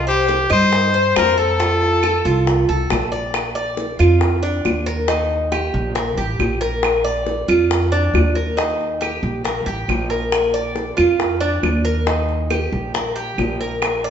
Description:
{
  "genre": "latin, Cuban son and guajira",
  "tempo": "137 BPM",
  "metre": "4/4",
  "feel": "straight",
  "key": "Bb major",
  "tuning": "A4 = 439 Hz",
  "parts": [
    { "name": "clear trumpet", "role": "melody", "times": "0.0-2.9 s", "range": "G4 to C5", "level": "-17 LUFS", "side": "left 2 dB", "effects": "none" },
    { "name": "Cuban tres", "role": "arpeggios", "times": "0.0-14.1 s", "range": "D4 to D5", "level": "-20 LUFS", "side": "right 1 dB", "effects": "none" },
    { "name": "upright bass", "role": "bass", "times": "0.0-14.1 s", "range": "A1 to G2", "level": "-21 LUFS", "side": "equal", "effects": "none" },
    { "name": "bongos", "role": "percussion", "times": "0.3-14.1 s", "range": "none", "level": "-24 LUFS", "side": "left 3 dB", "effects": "none" },
    { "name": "claves", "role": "percussion", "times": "0.5-14.0 s", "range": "none", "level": "-28 LUFS", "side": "right 3 dB", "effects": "none" }
  ],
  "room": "wet large studio reverb, RT60 1.4 s",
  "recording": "band playing live in one room, nothing above 7.8 kHz",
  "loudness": "-16 LUFS",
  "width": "side -8 dB against mid",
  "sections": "0.0-3.3 A section; 3.3-14.1 B section",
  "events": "none",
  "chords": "0.0 Cm; 1.6 F; 3.3 Bb; 5.1 Eb; 6.8 Bb; 8.6 Eb; 10.3 Bb; 12.1 Eb"
}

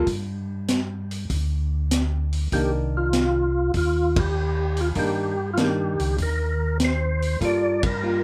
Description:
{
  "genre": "soul jazz organ trio",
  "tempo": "98 BPM",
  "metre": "4/4",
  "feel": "swing 69% on 8ths",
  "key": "unclear",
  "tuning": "A4 = 440 Hz",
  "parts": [
    { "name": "archtop guitar, miked and amplified", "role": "accompaniment", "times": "0.0-8.2 s", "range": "Eb3 to A4", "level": "-28 LUFS", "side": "equal", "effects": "none" },
    { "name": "mellow tonewheel organ", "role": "bass", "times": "0.0-8.2 s", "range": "C2 to G2", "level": "-28 LUFS", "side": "equal", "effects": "slow rotary speaker" },
    { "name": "vintage drum kit", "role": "drums", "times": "0.1-7.9 s", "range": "hi-hat, kick drum, ride cymbal, snare drum", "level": "-29 LUFS", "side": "equal", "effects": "none" },
    { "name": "overdriven tonewheel organ", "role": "melody", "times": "2.5-8.2 s", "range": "F4 to D5", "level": "-28 LUFS", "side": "equal", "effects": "slow rotary speaker, chorus vibrato" }
  ],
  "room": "moderate club reverb, RT60 0.6 s",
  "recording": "heard from further back in the room",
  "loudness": "-24 LUFS",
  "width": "mono",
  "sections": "0.0-8.2 A section",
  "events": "band accent 4.0-4.4, 7.7-8.0",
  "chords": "0.0 G5; 2.5 Cm9; 7.4 Gm9"
}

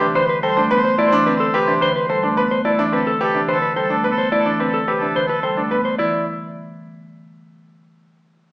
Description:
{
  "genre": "classical, minimalist pattern music",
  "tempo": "108 BPM",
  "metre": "3/4",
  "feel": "straight",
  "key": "unclear",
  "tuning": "A4 = 440 Hz",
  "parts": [
    { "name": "mellow electric guitar", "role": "melody", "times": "0.0-6.2 s", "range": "A4 to D5", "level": "-20 LUFS", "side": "left 1 dB", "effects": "none" },
    { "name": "clear oboe", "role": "second line", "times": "0.0-5.8 s", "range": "A4 to C5", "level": "-23 LUFS", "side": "right 1 dB", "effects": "none" },
    { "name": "marimba with medium hard mallets", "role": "accompaniment", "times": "0.0-6.2 s", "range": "C3 to B3", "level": "-24 LUFS", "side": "equal", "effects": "none" },
    { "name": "clear concert grand piano", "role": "arpeggios", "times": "0.0-6.2 s", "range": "C4 to B4", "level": "-20 LUFS", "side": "right 1 dB", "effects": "none" }
  ],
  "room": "wet recital hall reverb, RT60 1.4 s",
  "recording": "recorded in a church or concert hall, small speaker sound",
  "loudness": "-15 LUFS",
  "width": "side -21 dB against mid",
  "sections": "0.0-6.0 A section; 6.0-7.7 B section",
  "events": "none",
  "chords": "0.0 C69; 6.0 N.C."
}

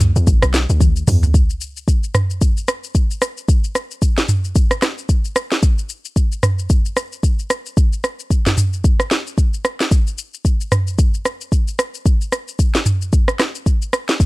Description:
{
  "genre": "amapiano",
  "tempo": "112 BPM",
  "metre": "4/4",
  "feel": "swing 58% on 16ths",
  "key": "unclear",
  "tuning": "A4 = 443 Hz",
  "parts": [
    { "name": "deep log drum bass", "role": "bass", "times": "0.0-1.3 s", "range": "A1 to E2", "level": "-16 LUFS", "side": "equal", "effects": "none" },
    { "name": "afro-pop drum kit", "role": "drums", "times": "0.0-14.3 s", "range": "hi-hat, kick drum, rim click, shaker, snare drum, toms", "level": "-15 LUFS", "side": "equal", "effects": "none" }
  ],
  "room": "little or no reverb",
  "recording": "none",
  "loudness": "-15 LUFS",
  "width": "side -21 dB against mid",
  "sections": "0.0-1.3 A section; 1.3-14.3 B section",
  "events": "drop 0.0-1.3; drum fill 0.8-1.3",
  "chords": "none"
}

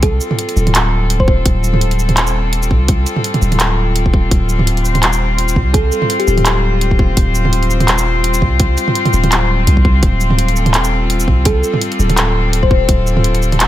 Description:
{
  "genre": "half-time drum and bass",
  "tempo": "168 BPM",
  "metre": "4/4",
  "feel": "swing 56% on 16ths, half-time",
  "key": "D phrygian",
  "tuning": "A4 = 439 Hz",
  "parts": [
    { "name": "thumb-piano-like synth pluck", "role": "melody", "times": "0.0-1.6, 5.7-6.7, 11.5-13.0 s", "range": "G4 to C5", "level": "-21 LUFS", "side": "left 2 dB", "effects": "chorus, tape echo" },
    { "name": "clear studio cello section", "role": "sustained chords", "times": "0.0-13.7 s", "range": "G3 to C5", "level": "-19 LUFS", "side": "left 2 dB", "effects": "vintage 12-bit sampler grit, sidechain pumping" },
    { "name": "long sustained 808-style bass", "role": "bass", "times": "0.0-13.7 s", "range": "D1 to C2", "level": "-14 LUFS", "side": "equal", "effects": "none" },
    { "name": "drum and bass drum kit", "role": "drums", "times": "0.0-13.7 s", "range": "handclaps, hi-hat, shaker, toms", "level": "-17 LUFS", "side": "right 2 dB", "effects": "none" },
    { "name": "electronic kick drum", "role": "drums", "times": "0.0-13.0 s", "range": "none", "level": "-14 LUFS", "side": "equal", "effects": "none" }
  ],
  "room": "little or no reverb",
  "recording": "none",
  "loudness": "-11 LUFS",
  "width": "side -13 dB against mid",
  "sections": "0.0-13.7 A section",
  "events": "none",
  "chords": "0.0 Dm"
}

